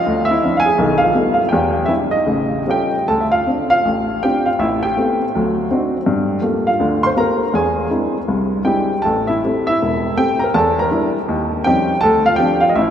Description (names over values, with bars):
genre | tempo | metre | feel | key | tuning
solo jazz | 162 BPM | 4/4 | swing 65% on 8ths, rubato | D minor | A4 = 440 Hz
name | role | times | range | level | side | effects
warm baby grand piano | solo | 0.0-12.9 s | E1 to C6 | -14 LUFS | equal | none
room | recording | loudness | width
wet cathedral reverb, RT60 5.0 s | recorded in a church or concert hall | -14 LUFS | side -9 dB against mid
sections
0.0-3.1 A section; 3.1-12.9 B section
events
none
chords
0.1 Dm9; 0.8 B7b13; 1.5 Emmaj7; 2.3 Aaug7; 3.1 Dm7; 4.6 Am9; 5.3 D7b9; 6.1 Gm9; 7.5 E7alt; 9.1 Am7; 10.6 Em7b5; 11.3 Eb13; 12.0 Dm7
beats
| 0.06 0.42 0.79 1.16 | 1.53 1.90 2.29 2.68 | 3.07 3.46 3.85 4.23 | 4.60 4.98 5.35 5.72 | 6.08 6.44 6.81 7.17 | 7.54 7.91 8.29 8.67 | 9.05 9.44 9.81 10.19 | 10.56 10.93 11.29 11.66 | 12.03 12.39 12.75